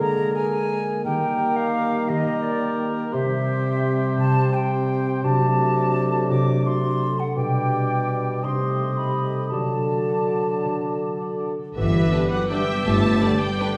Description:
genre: classical, orchestral ballroom waltz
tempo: 152-186 BPM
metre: 3/4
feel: rubato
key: Eb major, G major from 3.1 s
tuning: A4 = 441 Hz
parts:
  - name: hollow small flute group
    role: second line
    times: 0.0-13.8 s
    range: D5 to D6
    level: -30 LUFS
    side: equal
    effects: none
  - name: mellow clarinet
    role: second line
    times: 0.0-13.8 s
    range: F#4 to Ab4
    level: -33 LUFS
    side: equal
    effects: none
  - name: warm oboe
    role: second line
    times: 0.0-13.8 s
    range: Bb4 to Eb5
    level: -35 LUFS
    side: equal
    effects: none
  - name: mellow bassoon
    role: accompaniment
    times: 0.0-13.8 s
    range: B2 to B3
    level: -30 LUFS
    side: equal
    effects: none
  - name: mellow French horn section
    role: sustained chords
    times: 0.0-13.7 s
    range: F#3 to G4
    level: -31 LUFS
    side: equal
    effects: none
  - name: concert harp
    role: arpeggios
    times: 0.0-13.8 s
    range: G2 to Bb5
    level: -28 LUFS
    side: equal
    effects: none
  - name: rich symphonic violin section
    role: melody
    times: 11.8-13.8 s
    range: E5 to A5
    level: -32 LUFS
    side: equal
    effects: none
  - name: rich symphonic viola section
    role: accompaniment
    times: 11.8-13.8 s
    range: B4 to E5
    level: -33 LUFS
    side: equal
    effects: none
  - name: rich symphonic cello section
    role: bass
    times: 11.8-13.8 s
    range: E3 to A3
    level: -25 LUFS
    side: equal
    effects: none
  - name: rich symphonic double bass section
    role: bass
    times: 11.8-13.2 s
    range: G1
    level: -29 LUFS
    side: equal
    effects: none
  - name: warm tuba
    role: bass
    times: 11.8-13.2 s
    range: G1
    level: -31 LUFS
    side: equal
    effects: none
  - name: clear symphonic violin section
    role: second line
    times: 12.1-13.7 s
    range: D4 to B4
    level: -36 LUFS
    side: equal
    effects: none
  - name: mellow trombone section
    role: sustained chords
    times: 12.1-13.7 s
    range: D3 to G3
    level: -33 LUFS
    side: equal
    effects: none
room: wet recital hall reverb, RT60 1.3 s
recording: heard from further back in the room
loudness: -22 LUFS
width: mono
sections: 0.0-11.8 A section; 11.8-13.8 B section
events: none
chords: 0.0 Bb7/D; 1.0 Eb; 3.1 C; 5.2 D7/C; 7.4 G/B; 8.4 Am7b5/C; 9.5 D; 11.8 G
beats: | 0.00 0.34 0.70 | 1.04 1.39 1.75 | 2.08 2.43 2.79 | 3.13 3.47 3.83 | 4.18 4.53 4.89 | 5.24 5.59 5.96 | 6.30 6.65 7.02 | 7.37 7.72 8.08 | 8.43 8.78 9.16 | 9.52 9.90 10.29 | 10.66 11.03 11.41 | 11.77 12.13 12.50 | 12.86 13.21 13.59

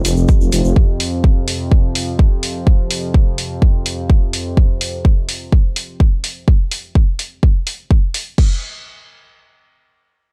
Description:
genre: melodic techno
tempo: 126 BPM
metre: 4/4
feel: straight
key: unclear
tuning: A4 = 440 Hz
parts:
  - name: dark detuned saw bass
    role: bass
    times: 0.0-0.7 s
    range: F1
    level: -17 LUFS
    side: equal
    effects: tube saturation, sidechain pumping
  - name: analog drone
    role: drone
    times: 0.0-4.6 s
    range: F2 to C3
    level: -26 LUFS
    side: equal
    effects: chorus, sidechain pumping
  - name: house drum kit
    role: drums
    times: 0.0-8.5 s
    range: crash cymbal, hi-hat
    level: -25 LUFS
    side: equal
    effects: none
  - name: egg shaker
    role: percussion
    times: 0.1-0.7 s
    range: none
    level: -31 LUFS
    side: equal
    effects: none
  - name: electronic kick drum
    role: drums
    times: 0.3-8.5 s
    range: none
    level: -14 LUFS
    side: equal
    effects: none
room: little or no reverb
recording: dry, gritty hardware recording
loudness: -16 LUFS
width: mono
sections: 0.0-8.4 A section; 8.4-10.3 B section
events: none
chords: 0.0 F5; 8.4 N.C.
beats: 0.29 | 0.76 1.24 1.72 2.19 | 2.67 3.14 3.62 4.10 | 4.57 5.05 5.52 6.00 | 6.48 6.95 7.43 7.91 | 8.38

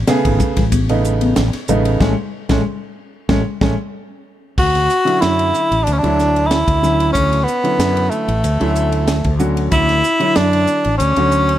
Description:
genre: electric jazz fusion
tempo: 93 BPM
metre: 4/4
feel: straight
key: D major from 4.6 s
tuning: A4 = 440 Hz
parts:
  - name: fretless electric bass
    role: bass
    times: 0.0-11.6 s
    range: G#1 to F#2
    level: -18 LUFS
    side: equal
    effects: lush chorus
  - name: warm baby grand piano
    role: accompaniment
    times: 0.1-11.6 s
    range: C#3 to C#5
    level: -20 LUFS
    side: right 2 dB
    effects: none
  - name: crisp fusion drum kit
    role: drums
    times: 0.1-11.6 s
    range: crash cymbal, hi-hat, kick drum, ride cymbal, snare drum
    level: -21 LUFS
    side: right 1 dB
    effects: none
  - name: congas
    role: percussion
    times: 0.1-3.8 s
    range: none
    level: -22 LUFS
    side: left 5 dB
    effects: none
  - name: breathy tenor saxophone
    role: melody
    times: 4.6-11.6 s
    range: A3 to F#4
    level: -16 LUFS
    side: equal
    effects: none
room: light reverb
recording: none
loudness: -13 LUFS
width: side -12 dB against mid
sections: 0.0-4.6 A section; 4.6-11.6 B section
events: band accent 2.0-4.6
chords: 0.0 Amaj9; 4.6 Dmaj9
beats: 0.08 0.72 1.37 | 2.01 2.65 3.29 3.94 | 4.58 5.22 5.87 6.51 | 7.15 7.79 8.44 9.08 | 9.72 10.36 11.00

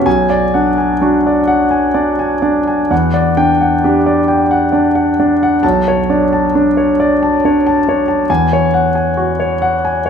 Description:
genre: classical, impressionist solo piano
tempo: 62-68 BPM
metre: 3/4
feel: rubato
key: B minor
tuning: A4 = 440 Hz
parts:
  - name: warm concert grand piano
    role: solo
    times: 0.0-10.1 s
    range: B1 to A5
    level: -11 LUFS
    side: equal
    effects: none
room: moderate recital hall reverb, RT60 1.5 s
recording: minimal, uncompressed stereo recording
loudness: -11 LUFS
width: side -7 dB against mid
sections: 0.1-10.1 A section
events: none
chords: 0.1 Bm6; 2.9 Em9; 5.6 Bm9; 8.3 E69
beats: | 0.06 1.02 1.96 | 2.92 3.83 4.72 | 5.63 6.53 7.42 | 8.29 9.18 10.06

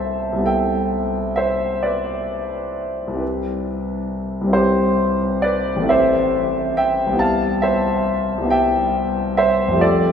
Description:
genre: classical, impressionist solo piano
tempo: 42-47 BPM (dotted quarters)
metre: 9/8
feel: rubato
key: C major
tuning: A4 = 440 Hz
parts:
  - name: clear concert grand piano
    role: solo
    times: 0.0-10.1 s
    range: A1 to A5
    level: -17 LUFS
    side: equal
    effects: none
room: wet cathedral reverb, RT60 5.0 s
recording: recorded in a church or concert hall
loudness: -17 LUFS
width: side -7 dB against mid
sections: 0.0-10.1 A section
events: none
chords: 0.0 Am9/C; 3.2 Cmaj7; 5.9 Amadd9; 7.2 Cmaj7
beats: 0.45 1.83 | 3.21 4.56 5.90 | 7.21 8.51 9.82

